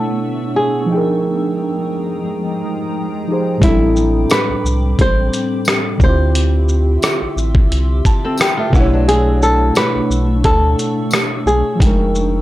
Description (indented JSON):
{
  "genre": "lo-fi hip hop",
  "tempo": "88 BPM",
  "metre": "4/4",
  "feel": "swing 56% on 16ths",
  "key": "unclear",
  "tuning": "A4 = 440 Hz",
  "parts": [
    { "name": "flamenco guitar", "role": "melody", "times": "0.0-12.4 s", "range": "E4 to C5", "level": "-18 LUFS", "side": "equal", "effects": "low-pass filter, analog delay" },
    { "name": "muted felt-like synth keys", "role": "accompaniment", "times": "0.0-12.4 s", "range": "A2 to A5", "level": "-19 LUFS", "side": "equal", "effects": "chorus, cassette tape, low-pass filter" },
    { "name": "granular cloud pad", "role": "sustained chords", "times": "0.0-12.4 s", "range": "F3 to E6", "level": "-24 LUFS", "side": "equal", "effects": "built-in reverb, low-pass filter" },
    { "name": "warm sub bass", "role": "bass", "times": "3.6-12.4 s", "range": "F1 to D2", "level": "-16 LUFS", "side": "equal", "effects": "tube saturation" },
    { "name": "dusty soul sampler-style drum kit", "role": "drums", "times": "3.6-12.3 s", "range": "hi-hat, kick drum, rim click, shaker", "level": "-15 LUFS", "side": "equal", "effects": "vintage 12-bit sampler grit" },
    { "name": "tambourine", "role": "percussion", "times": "4.3-11.3 s", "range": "none", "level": "-29 LUFS", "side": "left 2 dB", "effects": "none" },
    { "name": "flamenco guitar", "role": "second line", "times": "8.2-9.9 s", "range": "E3 to A4", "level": "-23 LUFS", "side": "left 1 dB", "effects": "low-pass filter, analog delay" }
  ],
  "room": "light reverb",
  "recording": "dry, gritty hardware recording",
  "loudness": "-13 LUFS",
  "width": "side -15 dB against mid",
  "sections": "0.0-12.4 A section",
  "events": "none",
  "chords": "0.0 Bm11; 0.9 Fm11; 3.6 Am11; 6.0 Dm11; 8.7 Bm11; 11.8 Fm11"
}